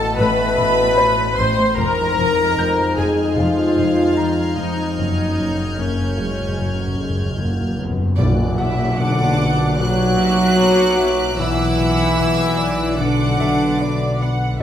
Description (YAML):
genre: cinematic, suspense film score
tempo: 75 BPM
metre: 4/4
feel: straight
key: unclear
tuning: A4 = 440 Hz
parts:
  - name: warm symphonic violin section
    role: melody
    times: 0.0-14.6 s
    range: C#5 to F#6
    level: -27 LUFS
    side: left 1 dB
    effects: none
  - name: warm symphonic violin section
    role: second line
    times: 0.0-14.6 s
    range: C#5 to C6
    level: -26 LUFS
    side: right 1 dB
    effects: none
  - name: rich studio viola section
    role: accompaniment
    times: 0.0-14.6 s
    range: C#4 to C5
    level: -22 LUFS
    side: left 1 dB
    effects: none
  - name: mellow French horn section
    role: sustained chords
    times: 0.0-14.6 s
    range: B2 to Eb4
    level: -22 LUFS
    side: left 2 dB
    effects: none
  - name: concert harp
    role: riff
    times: 0.0-14.6 s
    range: F2 to B3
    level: -24 LUFS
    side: left 4 dB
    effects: none
  - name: analog drone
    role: drone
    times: 0.0-14.6 s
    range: F#1 to F2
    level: -27 LUFS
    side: right 1 dB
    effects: chorus
  - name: bright grand piano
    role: texture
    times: 0.0-14.6 s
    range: C5 to G6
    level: -30 LUFS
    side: equal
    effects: none
  - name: warm symphonic violin section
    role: texture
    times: 0.0-14.1 s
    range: D6 to A6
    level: -32 LUFS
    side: right 1 dB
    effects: none
  - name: dark symphonic double bass section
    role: bass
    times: 0.2-14.6 s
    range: F1 to B1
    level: -27 LUFS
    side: right 2 dB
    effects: none
  - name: warm symphonic cello section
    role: bass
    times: 0.2-14.6 s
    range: F2 to F#3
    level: -25 LUFS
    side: right 2 dB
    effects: none
  - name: timpani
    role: percussion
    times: 5.0-9.3 s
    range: F#2 to B2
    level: -25 LUFS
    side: equal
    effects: none
  - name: tam-tam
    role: percussion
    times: 8.2-11.3 s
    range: none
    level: -27 LUFS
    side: equal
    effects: none
room: wet recital hall reverb, RT60 1.7 s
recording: none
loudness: -15 LUFS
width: side -10 dB against mid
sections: 0.0-8.2 A section; 8.2-14.6 B section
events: timpani fill 5.0-8.2; band accent 8.2-9.0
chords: 0.0 Amadd9; 1.8 Fm7; 5.0 F#; 8.2 Bm